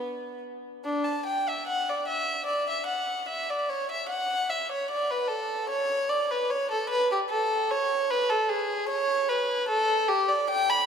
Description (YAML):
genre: classical, baroque-style suite movement for unaccompanied violin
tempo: 75 BPM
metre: 3/4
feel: rubato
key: D major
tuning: A4 = 437 Hz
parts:
  - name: warm violin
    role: solo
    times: 0.0-10.9 s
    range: B3 to B5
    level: -25 LUFS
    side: equal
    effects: none
room: wet church reverb, RT60 4.1 s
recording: recorded in a church or concert hall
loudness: -25 LUFS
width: side -7 dB against mid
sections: 0.8-10.9 A section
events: none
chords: none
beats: | 0.85 1.68 2.49 | 3.30 4.12 4.92 | 5.73 6.53 7.32 | 8.12 8.91 9.71 | 10.51